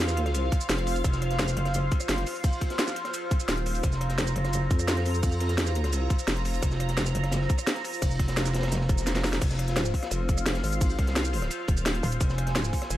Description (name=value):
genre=dark technical drum and bass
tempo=172 BPM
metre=4/4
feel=straight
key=F phrygian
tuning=A4 = 440 Hz
part: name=sweeping resonant pad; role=sustained chords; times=0.0-13.0 s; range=F4 to Bb5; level=-33 LUFS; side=equal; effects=chorus, sidechain pumping
part: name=vowel-sweep wobble bass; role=bass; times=0.0-6.6, 8.9-13.0 s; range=Eb1 to F2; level=-27 LUFS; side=equal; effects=chorus
part: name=crunchy breakbeat drum kit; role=drums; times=0.0-13.0 s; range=hi-hat, ride cymbal, snare drum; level=-38 LUFS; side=left 1 dB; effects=high-pass filter on cymbals, small room ambience, high-pass filter on hats, high-pass filter on snare, high-pass filter on room
part: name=drum and bass drum kit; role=drums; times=0.0-13.0 s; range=crash cymbal, hi-hat, rim click, shaker, snare drum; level=-30 LUFS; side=equal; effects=small room ambience
part: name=electronic kick drum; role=drums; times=0.5-12.8 s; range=none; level=-26 LUFS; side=equal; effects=small room ambience
part: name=metallic wobble bass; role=bass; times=1.0-9.9, 12.0-12.7 s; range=Eb1 to Gb1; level=-27 LUFS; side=equal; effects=chorus, tube saturation, sidechain pumping
room=studio reverb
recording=none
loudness=-24 LUFS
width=side -14 dB against mid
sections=0.0-9.4 A section; 9.4-13.0 A section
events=drop 0.0-9.4, 9.4-13.0; drum fill 9.1-9.4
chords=0.0 F5